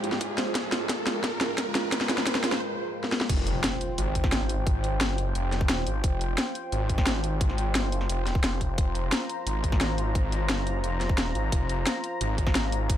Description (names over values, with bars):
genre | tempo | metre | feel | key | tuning
dark technical drum and bass | 175 BPM | 4/4 | straight | F minor | A4 = 440 Hz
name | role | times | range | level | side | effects
dark analog pad | sustained chords | 0.0-13.0 s | Ab3 to Bb5 | -34 LUFS | left 1 dB | chorus, sidechain pumping
felt-muted upright piano | arpeggios | 0.0-2.6 s | F4 to C5 | -36 LUFS | right 6 dB | vintage 12-bit sampler grit, sidechain pumping, digital delay
wide detuned saw bass | bass | 0.0-13.0 s | F1 to Ab1 | -29 LUFS | equal | chorus, tube saturation, sidechain pumping, high-pass filter
drum and bass drum kit | drums | 0.0-13.0 s | crash cymbal, hi-hat, snare drum | -28 LUFS | left 1 dB | none
riser and impact | sound effects | 0.0-4.7 s | none | -34 LUFS | equal | none
granular cloud pad | texture | 0.0-2.6 s | Ab3 to G5 | -40 LUFS | right 3 dB | none
electronic kick drum | drums | 0.2-13.0 s | none | -26 LUFS | equal | high-pass filter on kick
room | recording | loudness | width
digital ambience | none | -24 LUFS | side -11 dB against mid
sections
0.0-3.3 A section; 3.3-13.0 B section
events
build-up 0.0-3.3; drum fill 0.0-2.6, 3.0; riser 0.0-2.6; break 2.6-3.3; drop 3.3-13.0; impact 3.3-4.7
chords
0.0 Fmadd9